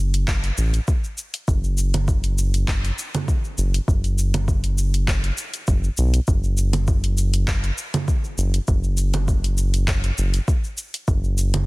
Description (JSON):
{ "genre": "organic downtempo", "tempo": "100 BPM", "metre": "4/4", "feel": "swing 53% on 16ths", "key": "F# minor pentatonic", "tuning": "A4 = 445 Hz", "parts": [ { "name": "round analog bass", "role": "bass", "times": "0.0-11.7 s", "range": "F#1 to B1", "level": "-20 LUFS", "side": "equal", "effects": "none" }, { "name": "deep house drum kit", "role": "drums", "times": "0.1-11.7 s", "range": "congas, handclaps, hi-hat, shaker", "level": "-27 LUFS", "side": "right 2 dB", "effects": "none" }, { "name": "electronic kick drum", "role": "drums", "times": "0.3-11.2 s", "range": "none", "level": "-21 LUFS", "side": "equal", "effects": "overdrive" } ], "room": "little or no reverb", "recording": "dense, heavily limited modern master", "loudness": "-19 LUFS", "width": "side -22 dB against mid", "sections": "0.0-11.7 A section", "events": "none", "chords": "none" }